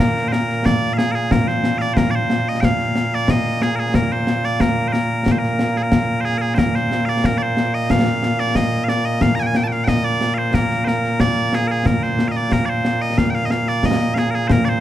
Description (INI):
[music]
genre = scottish traditional, Scottish pipe music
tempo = 91 BPM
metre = 2/4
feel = straight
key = Bb mixolydian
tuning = A4 = 438 Hz
[part]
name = loud bright bagpipes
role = melody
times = 0.0-14.8 s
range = Bb2 to Bb5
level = -19 LUFS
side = right 1 dB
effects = none
[part]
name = concert snare drum and concert bass drum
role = drums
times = 0.2-14.7 s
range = none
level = -19 LUFS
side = left 1 dB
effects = none
[sound]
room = light reverb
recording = dark, warm production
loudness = -16 LUFS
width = side -12 dB against mid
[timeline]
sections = 0.0-6.6 A section; 6.6-14.8 A section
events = none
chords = none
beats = 0.65 | 1.31 1.97 | 2.63 3.29 | 3.95 4.61 | 5.27 5.93 | 6.59 7.25 | 7.91 8.56 | 9.22 9.88 | 10.54 11.20 | 11.86 12.52 | 13.18 13.84 | 14.50